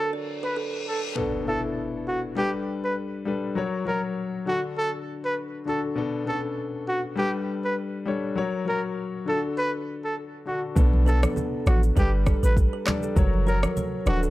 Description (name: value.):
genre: afrobeats.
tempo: 100 BPM.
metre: 4/4.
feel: swing 55% on 16ths.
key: B minor.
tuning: A4 = 440 Hz.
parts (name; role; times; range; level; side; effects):
warm trumpet; melody; 0.0-14.2 s; F#4 to B4; -29 LUFS; equal; plate reverb, digital delay.
warm grand piano; accompaniment; 0.0-14.3 s; B2 to D5; -29 LUFS; left 4 dB; none.
reverse cymbal and impact; sound effects; 0.2-3.6 s; none; -37 LUFS; left 1 dB; none.
kalimba; riff; 0.1-0.8, 11.1-14.3 s; A4 to D5; -34 LUFS; right 6 dB; digital delay.
warm 808-style bass; bass; 10.8-14.3 s; D1 to B1; -21 LUFS; equal; none.
afro-pop drum kit; drums; 10.8-14.3 s; handclaps, kick drum, rim click, shaker; -24 LUFS; equal; none.
congas; percussion; 10.8-14.2 s; none; -31 LUFS; right 2 dB; none.
room: light reverb.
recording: dark, warm production.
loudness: -23 LUFS.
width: side -17 dB against mid.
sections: 0.0-1.2 A section; 1.2-14.3 B section.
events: break 0.0-1.2; filter sweep 0.0-1.2; reverse cymbal 0.2-1.2; impact 1.2-3.6.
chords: 0.0 D; 1.2 Bm7; 2.4 Gadd9; 3.6 F#; 4.5 D; 6.0 Bm7; 7.2 Gadd9; 8.4 F#; 9.3 D; 10.8 Bm7; 12.0 Gadd9; 13.2 F#.